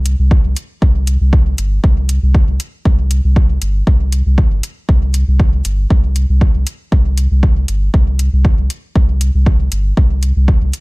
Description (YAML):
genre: dub techno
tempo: 118 BPM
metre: 4/4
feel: straight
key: unclear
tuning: A4 = 440 Hz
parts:
  - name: warm sub bass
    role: bass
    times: 0.0-10.7 s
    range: G1 to C2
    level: -13 LUFS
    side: equal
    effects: tube saturation, sidechain pumping
  - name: electronic hi-hat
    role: drums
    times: 0.1-10.8 s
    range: none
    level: -25 LUFS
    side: left 1 dB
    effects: overdrive
  - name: electronic kick drum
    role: drums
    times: 0.3-10.6 s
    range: none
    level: -12 LUFS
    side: equal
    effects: overdrive
room: little or no reverb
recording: none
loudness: -11 LUFS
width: side -24 dB against mid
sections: 0.0-10.8 A section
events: none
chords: none